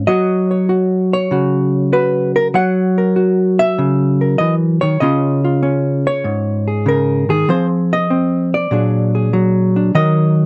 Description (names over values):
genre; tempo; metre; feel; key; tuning
solo jazz; 97 BPM; 4/4; swing 69% on 8ths; unclear; A4 = 441 Hz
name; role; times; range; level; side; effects
hollow-body jazz guitar; solo; 0.0-10.5 s; Ab2 to Gb5; -15 LUFS; equal; none
room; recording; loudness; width
light reverb; close, detailed microphones; -15 LUFS; mono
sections
0.0-10.5 A section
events
none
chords
0.1 Gb7; 5.0 Db; 7.5 Fm7; 8.7 Bbaug7; 9.9 Ebm